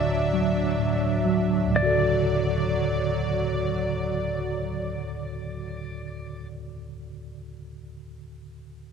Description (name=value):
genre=acoustic folk-pop ballad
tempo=39 BPM (dotted quarters)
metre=6/8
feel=straight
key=D major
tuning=A4 = 440 Hz
part: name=pedal steel guitar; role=melody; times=0.0-6.5 s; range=D5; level=-32 LUFS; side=left 3 dB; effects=none
part: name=mellow tine electric piano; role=accompaniment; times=0.0-8.9 s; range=D2 to A4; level=-26 LUFS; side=right 1 dB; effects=medium stereo tremolo
part: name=lush unison pad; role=sustained chords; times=0.0-6.5 s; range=F#3 to E5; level=-29 LUFS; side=right 1 dB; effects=chorus
room=light reverb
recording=none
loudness=-23 LUFS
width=side -6 dB against mid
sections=0.0-1.8 A section; 1.8-7.9 B section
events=slowing down 0.0-1.8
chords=0.0 D; 1.8 Dmaj7